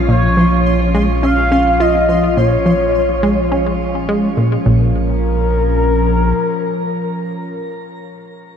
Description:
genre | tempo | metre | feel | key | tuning
ambient, sequencer-driven space music | 105 BPM | 4/4 | straight | Bb minor | A4 = 441 Hz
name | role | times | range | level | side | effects
evolving wavetable pad | sustained chords | 0.0-7.7 s | F3 to Bb4 | -20 LUFS | left 1 dB | chorus, built-in reverb, shimmer reverb
round analog bass | bass | 0.0-6.3 s | Bb1 | -18 LUFS | equal | none
pulsing gated texture | texture | 0.0-4.7 s | Db4 to C6 | -29 LUFS | left 1 dB | chorus, built-in reverb, shimmer reverb
expressive portamento lead | melody | 0.1-7.7 s | Bb4 to F5 | -19 LUFS | left 1 dB | chorus, cassette tape, shimmer reverb, ping-pong delay
plucky analog bass | riff | 0.1-4.9 s | Bb2 to F4 | -17 LUFS | equal | shimmer reverb, ping-pong delay
room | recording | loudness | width
wet cathedral reverb, RT60 4.7 s | in a vast, echoing space | -12 LUFS | side -8 dB against mid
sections
0.0-4.7 A section; 4.7-6.9 B section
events
none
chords
0.0 Bbm

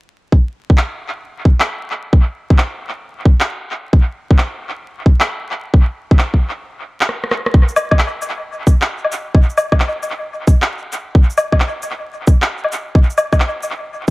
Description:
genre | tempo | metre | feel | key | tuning
future garage | 133 BPM | 4/4 | swing 66% on 16ths | none | none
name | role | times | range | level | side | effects
electronic kick drum | drums | 0.3-14.1 s | none | -10 LUFS | equal | none
electronic handclaps, rim click, shaker and woodblock | drums | 0.8-14.1 s | none | -19 LUFS | left 1 dB | dub echo
room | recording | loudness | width
light reverb | echo-heavy mix, vinyl crackle | -13 LUFS | side -21 dB against mid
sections
0.3-7.5 A section; 7.5-14.1 B section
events
break 6.6-7.5; drum fill 7.1-7.5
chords
none

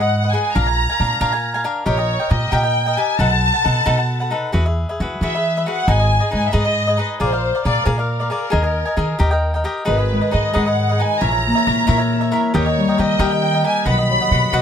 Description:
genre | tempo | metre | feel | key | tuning
mexican folk, mariachi | 90 BPM (dotted quarters) | 6/8 | rubato | G# minor | A4 = 440 Hz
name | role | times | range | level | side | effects
dark studio violin section | melody | 0.0-14.6 s | A#4 to B5 | -20 LUFS | equal | none
cavaquinho | accompaniment | 0.0-14.6 s | D4 to G#5 | -21 LUFS | left 2 dB | none
Celtic harp | arpeggios | 0.0-1.1, 9.9-14.6 s | D#3 to A#5 | -21 LUFS | left 3 dB | none
upright bass | bass | 0.0-14.6 s | G#1 to E3 | -19 LUFS | equal | none
room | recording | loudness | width
little or no reverb | close, detailed microphones | -15 LUFS | side -8 dB against mid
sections
0.0-14.6 A section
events
none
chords
0.0 G#m7; 0.6 A#7; 1.9 D#/A#; 3.2 B7; 4.5 Eadd9; 5.9 G#m; 7.2 A#7; 8.5 D#sus4; 9.2 D#; 9.9 G#m; 11.2 A#dim; 12.5 D#; 13.9 B

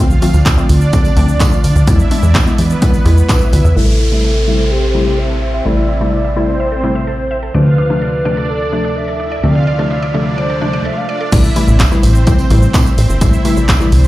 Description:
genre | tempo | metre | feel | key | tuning
dance-pop | 127 BPM | 4/4 | straight | A minor | A4 = 441 Hz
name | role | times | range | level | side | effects
hollow square pluck | accompaniment | 0.0-14.0 s | C3 to F4 | -18 LUFS | left 2 dB | chorus, sidechain pumping, low-pass filter
plucky analog bass | bass | 0.0-14.1 s | G1 to E3 | -13 LUFS | equal | sidechain pumping
punchy analog drum machine | drums | 0.1-3.8, 11.3-14.1 s | crash cymbal, handclaps, hi-hat, kick drum, shaker | -13 LUFS | equal | none
tambourine | percussion | 0.2-3.8, 11.3-14.1 s | none | -32 LUFS | right 6 dB | none
hollow clarinet-like synth lead | melody | 3.3-11.2 s | G4 to F5 | -20 LUFS | equal | chorus, low-pass filter, tape echo
mallet-like synth pluck | arpeggios | 3.8-11.3 s | D4 to E5 | -27 LUFS | right 1 dB | chorus, phaser, sidechain pumping, low-pass filter, tape echo
downlifter and riser | sound effects | 3.8-10.9 s | none | -27 LUFS | right 1 dB | none
room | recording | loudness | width
light reverb | played on a big sound system in a bare room, large studio reverb | -10 LUFS | side -16 dB against mid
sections
0.0-3.8 A section; 3.8-11.3 B section; 11.3-14.1 A section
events
drop 0.0-3.8, 11.3-14.1; filter sweep 3.8-11.3; riser 8.9-11.3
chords
0.0 Dm7; 1.9 E; 3.8 Am7; 7.5 Dm7; 11.3 Am7

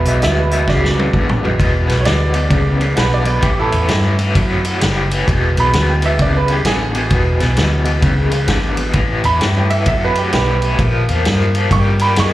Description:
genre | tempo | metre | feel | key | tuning
electric blues shuffle | 131 BPM | 4/4 | swing 64% on 8ths | unclear | A4 = 440 Hz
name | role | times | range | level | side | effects
bright upright piano | second line | 0.0-12.3 s | B3 to C#6 | -20 LUFS | right 4 dB | slapback echo, analog delay
raw garage guitar | riff | 0.0-12.3 s | E2 to G#3 | -19 LUFS | left 2 dB | overdrive, tremolo, slapback echo
vintage muted fingered electric bass | bass | 0.0-12.3 s | E1 to G2 | -16 LUFS | equal | none
vintage drum kit | drums | 0.1-12.3 s | hi-hat, kick drum, ride cymbal, snare drum, toms | -19 LUFS | equal | none
room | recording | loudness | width
small room ambience | live gig heard through the venue's PA, club reverb | -13 LUFS | side -15 dB against mid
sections
0.0-1.6 A section; 1.6-12.3 B section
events
drum fill 0.7-1.6; upright piano solo 1.6-12.3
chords
0.0 Esus2; 1.6 E5; 3.4 A5; 5.3 E7; 9.0 Asus2; 10.8 A#5

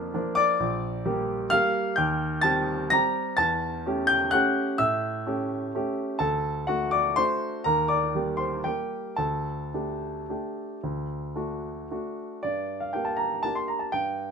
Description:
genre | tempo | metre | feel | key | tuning
classical, piano waltz | 108-135 BPM | 3/4 | rubato | G minor | A4 = 438 Hz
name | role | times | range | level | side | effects
warm grand piano | solo | 0.0-14.3 s | Bb1 to Bb6 | -24 LUFS | equal | none
room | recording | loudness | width
light reverb | minimal, uncompressed stereo recording | -24 LUFS | side -6 dB against mid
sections
0.0-12.4 A section; 12.4-14.3 B section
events
none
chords
0.0 Bb; 0.6 Gm/Bb; 2.0 Cm/Eb; 3.4 A7/E; 6.2 D; 7.7 Eb; 9.2 Dsus4; 10.8 D; 12.4 Gm

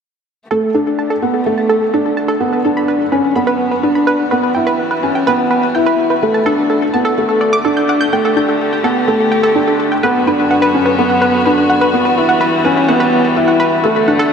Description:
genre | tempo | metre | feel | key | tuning
piano and strings electronica | 126 BPM | 4/4 | straight | unclear | A4 = 439 Hz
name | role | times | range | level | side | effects
dark string quartet | sustained chords | 0.5-14.3 s | F#2 to G4 | -20 LUFS | left 2 dB | none
analog pluck | arpeggios | 0.5-14.3 s | A4 to G6 | -17 LUFS | right 1 dB | chorus, vintage 12-bit sampler grit, ping-pong delay
felt-muted upright piano | riff | 0.5-14.3 s | A3 to E4 | -14 LUFS | equal | analog chorus, ping-pong delay
room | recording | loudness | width
wet cathedral reverb, RT60 5.2 s | dreamy mix soaked in reverb | -11 LUFS | side -6 dB against mid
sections
0.5-14.3 A section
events
fade-in on string quartet 0.5-14.3; filter sweep on synth arpeggio sound 0.5-14.3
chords
0.5 Gsus2; 2.4 Bm/F#; 4.3 Emadd9; 6.2 D; 8.1 Gsus2; 10.0 Bm/F#; 11.9 Emadd9

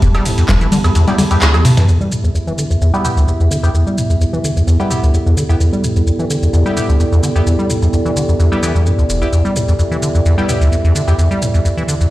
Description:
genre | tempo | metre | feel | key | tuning
acid house | 129 BPM | 4/4 | swing 53% on 16ths | E minor pentatonic | A4 = 440 Hz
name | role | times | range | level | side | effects
dark analog pad | sustained chords | 0.0-12.1 s | B3 to A5 | -23 LUFS | right 2 dB | chorus, sidechain pumping
deep acid bass | riff | 0.0-12.1 s | E1 to G3 | -13 LUFS | equal | tube saturation, tape echo
booming analog drum machine | drums | 0.0-12.1 s | congas, handclaps, hi-hat, ride cymbal, rim click, shaker, toms, woodblock | -19 LUFS | equal | none
dusty soul sampler-style drum kit | drums | 0.0-1.9 s | hi-hat, snare drum | -27 LUFS | equal | overdrive, sidechain pumping on hats, high-pass filter on hats, high-pass filter on snare, high-pass filter on room
electronic kick drum | drums | 0.0-0.6 s | none | -14 LUFS | equal | none
warbly tape-like pad | texture | 0.0-12.1 s | E4 to B5 | -24 LUFS | equal | chorus, built-in reverb, sidechain pumping
band-passed chord stab | stabs | 1.1-11.1 s | B3 to G4 | -24 LUFS | left 1 dB | phaser, lush chorus, cassette tape, tape echo
room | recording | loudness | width
moderate small room reverb, RT60 0.5 s | played on a big sound system in a bare room, large studio reverb | -12 LUFS | side -16 dB against mid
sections
0.0-1.9 A section; 1.9-12.1 B section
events
drop 0.0-1.9; kick drops out 1.0-1.9; band accent 1.4; drum fill 1.5-1.9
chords
0.0 Em

